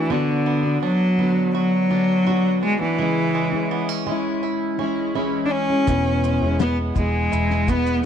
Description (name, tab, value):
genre	acoustic pop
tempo	83 BPM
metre	4/4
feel	straight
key	E mixolydian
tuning	A4 = 438 Hz
part	clear cello	melody	0.0-8.0 s	D3 to D4	-20 LUFS	equal	none
part	fingerpicked plugged-in steel-string acoustic guitar	accompaniment	0.0-8.1 s	E2 to F#4	-24 LUFS	equal	double-tracked left and right
part	bluegrass banjo	arpeggios	0.0-8.1 s	D3 to F#4	-32 LUFS	right 10 dB	none
part	vintage muted fingered electric bass	bass	5.9-8.1 s	E1	-24 LUFS	equal	none
part	cloth-damped thuddy drum kit	drums	5.9-8.0 s	kick drum, shaker, snare drum	-24 LUFS	left 3 dB	none
room	light reverb, studio ambience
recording	1960s-style stereo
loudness	-18 LUFS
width	side -8 dB against mid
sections	0.0-8.1 A section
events	none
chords	0.1 Bm/D; 3.0 C#m; 5.9 E